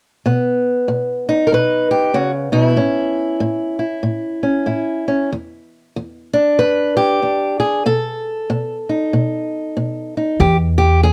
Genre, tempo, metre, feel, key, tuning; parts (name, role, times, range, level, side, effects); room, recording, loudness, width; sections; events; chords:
acoustic country blues, solo or duo; 95 BPM; 4/4; swing 60% on 8ths; A4 = 440 Hz
fingerpicked old ladder-braced acoustic guitar; melody; 0.3-11.1 s; E2 to B4; -18 LUFS; equal
upright bass; bass; 10.4-11.1 s; E2; -15 LUFS; equal
light reverb; close, detailed microphones; -18 LUFS; mono
0.3-10.4 A section
0.3 B; 2.8 A; 5.3 Em7; 7.9 B7; 10.4 N.C.